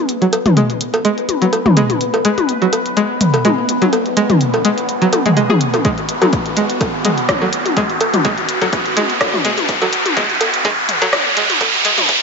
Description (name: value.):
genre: minimal techno.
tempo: 125 BPM.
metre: 4/4.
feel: swing 54% on 16ths.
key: G# minor.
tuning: A4 = 442 Hz.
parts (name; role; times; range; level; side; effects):
riser; sound effects; 0.7-12.2 s; none; -19 LUFS; right 1 dB; none.
bubbling stepped-filter texture; texture; 0.0-12.2 s; B3 to B4; -22 LUFS; equal; chorus, built-in reverb, sidechain pumping.
minimal click drum kit; drums; 0.1-12.2 s; hi-hat, rim click; -21 LUFS; equal; high-pass filter on hats, high-pass filter on snare, high-pass filter on room.
string-like resonator pluck; riff; 0.2-11.9 s; F#3 to G#4; -19 LUFS; right 1 dB; chorus, sidechain pumping, tape echo.
electronic cowbell and toms; percussion; 0.3-12.1 s; none; -18 LUFS; left 2 dB; ping-pong delay.
electronic kick drum; drums; 5.8-12.2 s; none; -23 LUFS; equal; none.
room: moderate digital room reverb, RT60 1.2 s.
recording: high-pass filter, nothing above 7.6 kHz.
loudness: -13 LUFS.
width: side -4 dB against mid.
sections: 0.0-12.2 A section.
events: build-up 0.0-12.2; filter sweep on synth pluck 0.0-12.2; filter sweep 0.0-12.2; riser 0.7-12.2.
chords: 0.0 G#m7.